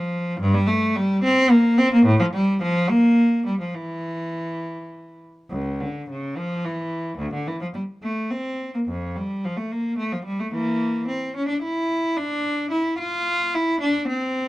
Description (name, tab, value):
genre	classical, baroque-style suite movement for unaccompanied cello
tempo	64-75 BPM (dotted quarters)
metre	6/8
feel	rubato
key	unclear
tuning	A4 = 441 Hz
part	rich cello	solo	0.0-14.5 s	C#2 to F4	-20 LUFS	equal	none
room	light reverb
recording	dark, warm production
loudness	-20 LUFS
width	side -17 dB against mid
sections	0.0-5.5 A section; 5.5-14.5 B section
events	none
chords	none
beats	| 0.41 1.24 | 2.06 2.89 | 3.74 4.61 | 5.51 6.36 | 7.19 8.01 | 8.87 9.70 | 10.53 11.36 | 12.18 12.99 | 13.81